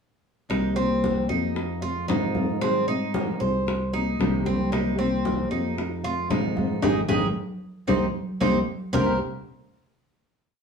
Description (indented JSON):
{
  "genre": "latin, Cuban son and guajira",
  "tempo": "114 BPM",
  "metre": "4/4",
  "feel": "straight",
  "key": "C minor",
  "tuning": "A4 = 441 Hz",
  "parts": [
    { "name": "nylon-string guitar", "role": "accompaniment", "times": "0.5-9.2 s", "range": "C3 to Ab4", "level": "-28 LUFS", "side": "left 1 dB", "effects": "none" },
    { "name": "Cuban tres", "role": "arpeggios", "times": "0.5-9.2 s", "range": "C4 to C5", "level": "-28 LUFS", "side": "right 2 dB", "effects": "none" },
    { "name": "sustaining fretless electric bass", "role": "bass", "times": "0.5-9.2 s", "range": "Ab1 to Ab2", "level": "-28 LUFS", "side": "equal", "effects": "none" },
    { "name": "bongos", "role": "percussion", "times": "0.5-9.1 s", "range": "none", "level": "-31 LUFS", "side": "left 5 dB", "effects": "none" },
    { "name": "congas", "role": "percussion", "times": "0.5-9.1 s", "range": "none", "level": "-31 LUFS", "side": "equal", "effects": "none" }
  ],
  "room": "moderate studio reverb, RT60 0.9 s",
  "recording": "band playing live in one room, studio ambience",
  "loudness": "-22 LUFS",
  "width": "side -6 dB against mid",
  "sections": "0.5-8.9 montuno (vamp); 8.9-10.6 final chord",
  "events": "band accent 6.8-8.9; drum fill 8.1-8.9",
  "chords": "0.5 Cm7; 1.6 Fm7; 2.6 Abmaj7; 3.7 Cm7; 5.8 Fm7; 6.8 Abmaj7; 7.9 Cm7"
}